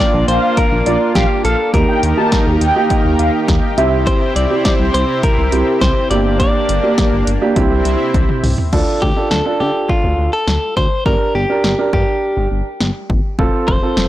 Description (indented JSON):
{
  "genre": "synth-pop",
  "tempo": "103 BPM",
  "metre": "4/4",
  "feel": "straight",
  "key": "D minor",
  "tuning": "A4 = 440 Hz",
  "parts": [
    { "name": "direct-recorded clean electric guitar", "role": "melody", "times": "0.0-14.1 s", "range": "F4 to D5", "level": "-19 LUFS", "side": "left 1 dB", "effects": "none" },
    { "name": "dark grand piano", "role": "accompaniment", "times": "0.0-14.0 s", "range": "Bb3 to Bb4", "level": "-18 LUFS", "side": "right 4 dB", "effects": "none" },
    { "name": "lush unison pad", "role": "sustained chords", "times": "0.0-8.7 s", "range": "C3 to Bb4", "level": "-22 LUFS", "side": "left 2 dB", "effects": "chorus" },
    { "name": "smooth gliding synth bass", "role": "bass", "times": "0.1-14.1 s", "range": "F1 to D3", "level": "-18 LUFS", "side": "equal", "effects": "none" },
    { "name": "mellow synth brass", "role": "second line", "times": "0.3-3.9 s", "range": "D5 to A5", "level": "-19 LUFS", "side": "equal", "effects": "chorus, phaser, analog delay" },
    { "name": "punchy analog drum machine", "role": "drums", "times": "0.3-14.1 s", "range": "crash cymbal, hi-hat, kick drum, snare drum, toms", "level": "-17 LUFS", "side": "equal", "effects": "none" }
  ],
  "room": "light reverb, digital ambience",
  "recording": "blown-out, overdriven recording, overdrive",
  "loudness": "-12 LUFS",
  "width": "side -14 dB against mid",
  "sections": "0.0-8.7 A section; 8.7-14.1 B section",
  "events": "drum fill 8.1-8.7",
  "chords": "0.0 Bb; 1.7 Eb; 3.8 C; 6.1 Gm; 7.6 C; 8.7 Dm; 11.1 Gm; 13.4 F",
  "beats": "0.57 1.15 | 1.74 2.32 2.90 3.48 | 4.07 4.65 5.23 5.82 | 6.40 6.98 7.56 8.14 | 8.73 9.31 9.89 10.47 | 11.06 11.64 12.22 12.80 | 13.39 13.97"
}